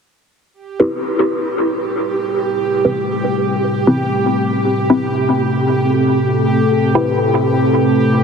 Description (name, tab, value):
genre	techno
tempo	free time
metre	none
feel	none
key	A minor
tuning	A4 = 441 Hz
part	deep dark ambient pad	sustained chords	2.2-8.2 s	A3 to A4	-16 LUFS	left 1 dB	chorus, built-in reverb
part	bubbling stepped-filter texture	texture	0.7-8.2 s	G4	-20 LUFS	right 3 dB	chorus, built-in reverb
part	filtered dub chord stab	stabs	0.8-7.9 s	C4 to B4	-18 LUFS	left 1 dB	phaser, dub echo
room	wet huge ambient reverb, RT60 7.8 s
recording	heavily compressed radio sound, multiband compression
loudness	-14 LUFS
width	side -6 dB against mid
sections	0.5-8.2 A section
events	filter sweep on ambient pad 0.5-8.2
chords	0.5 Am7